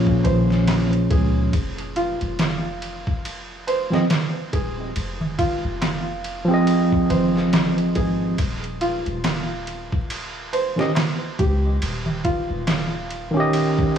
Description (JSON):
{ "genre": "trip hop", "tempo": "70 BPM", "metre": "4/4", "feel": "swing 59% on 16ths", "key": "F minor", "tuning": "A4 = 438 Hz", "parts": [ { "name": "bright tine electric piano", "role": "accompaniment", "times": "0.0-14.0 s", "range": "Bb2 to Eb5", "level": "-20 LUFS", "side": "right 1 dB", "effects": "harmonic tremolo, low-pass filter, tape echo" }, { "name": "felt-muted upright piano", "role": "arpeggios", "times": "0.0-14.0 s", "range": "F4 to C5", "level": "-28 LUFS", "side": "right 2 dB", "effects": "analog delay" }, { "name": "soft 808-style bass", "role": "bass", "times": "0.0-13.9 s", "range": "Eb1 to Db2", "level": "-27 LUFS", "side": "equal", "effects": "none" }, { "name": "trip hop sampler-style drum kit", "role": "drums", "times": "0.1-14.0 s", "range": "kick drum, ride cymbal, snare drum", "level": "-25 LUFS", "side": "equal", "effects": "studio reverb" }, { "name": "darbuka", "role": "percussion", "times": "0.3-12.9 s", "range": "none", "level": "-30 LUFS", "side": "left 2 dB", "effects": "none" } ], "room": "little or no reverb", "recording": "dry, gritty hardware recording, vinyl crackle", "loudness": "-19 LUFS", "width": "side -8 dB against mid", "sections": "0.0-14.0 A section", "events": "filter sweep on tine electric piano 0.0-14.0", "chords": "0.0 Bbm7; 1.5 Fm7; 8.4 Eb7" }